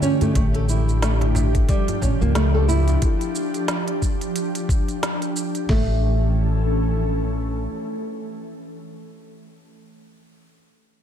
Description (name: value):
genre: organic downtempo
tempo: 90 BPM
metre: 4/4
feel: swing 58% on 16ths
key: unclear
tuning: A4 = 440 Hz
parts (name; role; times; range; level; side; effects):
- ethereal airy pad; sustained chords; 0.0-8.7 s; D3 to A4; -26 LUFS; equal; ensemble chorus, built-in reverb, sidechain pumping
- nylon-string guitar; arpeggios; 0.0-6.0 s; G3 to A4; -26 LUFS; right 1 dB; ping-pong delay
- organic electronic drum kit; drums; 0.0-5.7 s; hi-hat, shaker, snare drum; -29 LUFS; right 1 dB; none
- djembe; percussion; 0.0-3.0 s; none; -28 LUFS; right 1 dB; none
- upright bass; bass; 0.4-7.7 s; A1 to C#2; -20 LUFS; equal; sidechain pumping
- dusty soul sampler-style drum kit; drums; 0.4-5.9 s; hi-hat, kick drum, snare drum; -21 LUFS; equal; overdrive
room: moderate recital hall reverb, RT60 1.5 s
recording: dark, warm production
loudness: -19 LUFS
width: side -9 dB against mid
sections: 0.0-5.7 A section; 5.7-8.4 B section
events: none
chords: 0.4 Bb6/A (rootless); 5.7 A